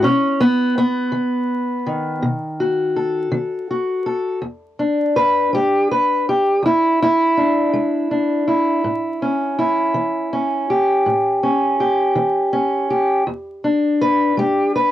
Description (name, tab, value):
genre	acoustic country blues, solo or duo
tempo	54 BPM (dotted quarters)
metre	12/8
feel	straight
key	unclear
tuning	A4 = 440 Hz
part	fingerpicked steel-string acoustic guitar	solo	0.0-14.9 s	E2 to B4	-16 LUFS	equal	cassette tape
room	light reverb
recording	home recording on cassette, vinyl crackle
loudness	-16 LUFS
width	side -12 dB against mid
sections	0.0-4.4 A section; 4.4-14.9 B section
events	steel-string acoustic guitar solo 0.0-4.4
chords	0.0 B7; 4.4 E7; 8.8 A7; 13.3 E7